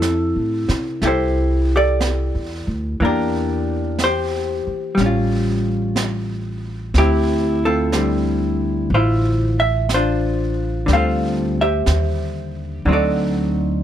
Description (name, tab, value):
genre	jazz ballad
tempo	61 BPM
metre	4/4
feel	swing 68% on 8ths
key	D minor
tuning	A4 = 440 Hz
part	vintage hollow-body jazz guitar	accompaniment	0.0-13.8 s	D3 to F5	-19 LUFS	equal	none
part	upright bass	bass	0.0-13.8 s	A1 to C3	-21 LUFS	equal	none
part	jazz brush drum kit	drums	0.0-13.8 s	brushed snare drum, hi-hat, snare drum	-29 LUFS	right 3 dB	none
room	little or no reverb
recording	close, detailed microphones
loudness	-17 LUFS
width	side -10 dB against mid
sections	0.0-13.8 A section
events	none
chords	0.0 Fmaj9 (rootless); 3.0 Em7b5; 5.0 Aaug7; 6.9 Dm11; 12.9 D7b9